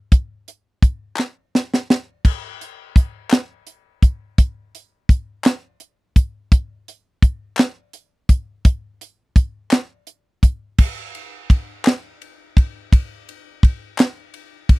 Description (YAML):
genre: gospel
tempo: 56 BPM (dotted quarters)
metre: 6/8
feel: straight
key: none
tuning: none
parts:
  - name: tight funk drum kit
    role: drums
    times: 0.1-14.8 s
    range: crash cymbal, hi-hat, kick drum, ride cymbal, snare drum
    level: -13 LUFS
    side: equal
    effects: none
  - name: group handclap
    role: percussion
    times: 1.2-14.3 s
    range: none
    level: -25 LUFS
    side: left 5 dB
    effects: none
room: little or no reverb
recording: dry, close 1970s-style studio recording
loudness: -17 LUFS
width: side -23 dB against mid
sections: 0.0-10.8 A section; 10.8-14.8 A section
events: drum fill 1.2-2.3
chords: none